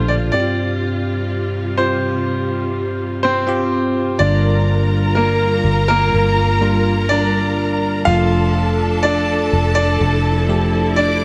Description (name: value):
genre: pop ballad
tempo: 62 BPM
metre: 4/4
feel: straight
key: unclear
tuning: A4 = 439 Hz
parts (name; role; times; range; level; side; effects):
- clear concert grand piano; melody; 0.0-11.2 s; Bb3 to F5; -22 LUFS; equal; delay
- bell-like tine electric piano; accompaniment; 0.0-11.2 s; G2 to A4; -23 LUFS; equal; none
- warm studio string section; sustained chords; 0.0-11.2 s; C3 to Bb4; -27 LUFS; equal; none
- vintage muted fingered electric bass; bass; 0.0-11.2 s; F1 to Bb1; -21 LUFS; equal; none
- warm symphonic violin section; second line; 4.2-11.2 s; A4 to D6; -26 LUFS; equal; none
room: moderate plate reverb, RT60 3.5 s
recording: dreamy mix soaked in reverb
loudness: -17 LUFS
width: mono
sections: 0.0-4.2 A section; 4.2-11.2 B section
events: none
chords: 0.3 Csus4; 4.2 Gm7; 8.1 Dm/F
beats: | 0.33 1.29 2.26 3.23 | 4.20 5.17 6.13 7.10 | 8.07 9.04 10.01 10.97